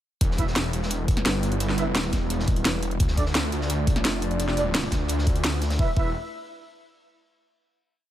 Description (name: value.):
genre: dark technical drum and bass.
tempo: 172 BPM.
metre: 4/4.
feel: straight.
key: E phrygian.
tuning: A4 = 439 Hz.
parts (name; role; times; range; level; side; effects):
dark analog pad; sustained chords; 0.7-6.0 s; G3 to D5; -32 LUFS; equal; chorus, sidechain pumping.
wide detuned saw bass; bass; 0.2-6.1 s; E1 to D2; -26 LUFS; equal; chorus, overdrive, sidechain pumping.
crunchy breakbeat drum kit; drums; 0.2-5.8 s; hi-hat, snare drum; -38 LUFS; left 1 dB; high-pass filter on hats, high-pass filter on snare, high-pass filter on room.
drum and bass drum kit; drums; 0.2-5.8 s; hi-hat, snare drum; -27 LUFS; equal; overdrive.
electronic kick drum; drums; 0.2-6.0 s; none; -23 LUFS; equal; overdrive.
dark brass ensemble; stabs; 0.4-6.1 s; D4 to E5; -32 LUFS; right 3 dB; vintage 12-bit sampler grit, ping-pong delay.
room: small room ambience.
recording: none.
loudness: -22 LUFS.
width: side -12 dB against mid.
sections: 0.2-5.8 drop; 5.8-7.2 final chord.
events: drop 0.2-5.8.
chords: 0.2 Em; 3.0 Dm; 5.8 Em.